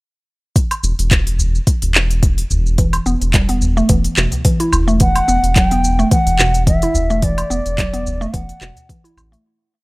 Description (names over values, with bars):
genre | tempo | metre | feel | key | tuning
organic downtempo | 108 BPM | 4/4 | swing 55% on 16ths | E minor | A4 = 440 Hz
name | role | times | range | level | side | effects
electronic kick drum | drums | 0.6-9.0 s | none | -15 LUFS | equal | overdrive
organic electronic drum kit | drums | 0.6-9.4 s | handclaps, hi-hat, shaker, woodblock | -19 LUFS | equal | overdrive
round analog bass | bass | 0.8-9.4 s | E1 to A1 | -18 LUFS | equal | none
udu | percussion | 1.4-9.3 s | none | -23 LUFS | equal | none
mallet-like synth pluck | arpeggios | 2.8-9.4 s | B2 to E4 | -20 LUFS | equal | chorus, tape echo
bansuri | melody | 5.0-8.9 s | D5 to G5 | -19 LUFS | equal | tape echo
room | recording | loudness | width
digital ambience | dry, gritty hardware recording | -13 LUFS | side -23 dB against mid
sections
0.6-9.4 groove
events
fade-out 6.5-9.4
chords
0.6 E5; 5.0 D/E